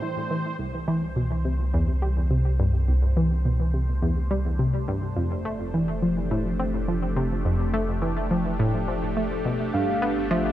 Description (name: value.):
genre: ambient, sequencer-driven space music.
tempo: 105 BPM.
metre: 4/4.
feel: straight.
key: unclear.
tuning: A4 = 440 Hz.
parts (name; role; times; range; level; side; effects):
phased analog pad; sustained chords; 0.0-10.5 s; E3 to C5; -31 LUFS; left 1 dB; phaser, chorus.
analog pluck; riff; 0.0-10.4 s; C2 to C4; -25 LUFS; equal; chorus, tape echo.
warm sub bass; bass; 0.6-10.5 s; F1 to C2; -26 LUFS; equal; none.
pulse-width lead; melody; 9.7-10.5 s; E5 to F5; -27 LUFS; right 1 dB; chorus, tape echo.
room: moderate huge ambient reverb, RT60 7.7 s.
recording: cassette tape.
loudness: -22 LUFS.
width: side -13 dB against mid.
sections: 0.6-10.5 A section.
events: fade-in on analog synth pad 0.6-10.5.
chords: 0.0 Am; 0.6 C; 5.2 F; 9.7 G.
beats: 0.02 | 0.59 1.17 1.74 2.31 | 2.88 3.45 4.02 4.59 | 5.17 5.74 6.31 6.88 | 7.45 8.02 8.59 9.16 | 9.74 10.31.